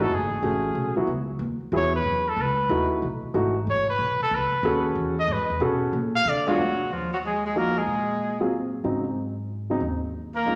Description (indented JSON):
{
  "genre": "modal jazz",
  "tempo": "186 BPM",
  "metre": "3/4",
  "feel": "swing 64% on 8ths",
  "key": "F# dorian, Eb dorian from 6.9 s",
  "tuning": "A4 = 440 Hz",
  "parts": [
    { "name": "warm trumpet", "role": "melody", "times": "0.0-10.6 s", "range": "F4 to E#5", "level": "-28 LUFS", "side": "equal", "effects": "none" },
    { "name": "warm baby grand piano", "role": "accompaniment", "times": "0.0-10.6 s", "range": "Db3 to A4", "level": "-29 LUFS", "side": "equal", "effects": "none" },
    { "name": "upright bass", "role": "bass", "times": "0.0-10.6 s", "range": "F#1 to D3", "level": "-33 LUFS", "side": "equal", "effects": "none" },
    { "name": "warm tenor saxophone", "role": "second line", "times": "6.5-10.6 s", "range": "F3 to Bb3", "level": "-32 LUFS", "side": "equal", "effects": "none" }
  ],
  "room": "wet large studio reverb, RT60 1.3 s",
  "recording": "none",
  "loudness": "-25 LUFS",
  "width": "mono",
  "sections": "0.0-6.9 A section; 6.9-10.6 B section",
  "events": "trumpet solo 0.0-6.9",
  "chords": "0.0 F#13sus4; 3.0 B13sus4; 5.9 A#; 6.9 Ebsus4"
}